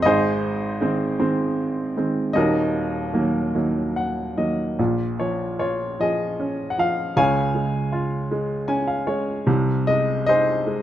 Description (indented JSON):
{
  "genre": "classical, lyrical solo piano",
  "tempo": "51 BPM (dotted quarters)",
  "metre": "6/8",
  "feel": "uneven beats, rubato",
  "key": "unclear",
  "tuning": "A4 = 440 Hz",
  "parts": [
    { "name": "warm upright piano", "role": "solo", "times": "0.0-10.8 s", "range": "Eb1 to Ab5", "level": "-20 LUFS", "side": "equal", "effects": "none" }
  ],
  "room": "light reverb",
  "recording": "close, detailed microphones",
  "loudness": "-20 LUFS",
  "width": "side -12 dB against mid",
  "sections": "0.0-4.8 A section; 4.8-10.8 B section",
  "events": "upright piano fill 3.6-4.8, 8.3-9.5",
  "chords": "0.1 Ab; 2.4 Ebm; 4.8 Bbm7; 7.2 Db; 9.5 Ab/C",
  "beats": "| 0.06 1.20 | 2.36 3.56 | 4.79 6.00 | 7.17 8.31 | 9.48 10.68"
}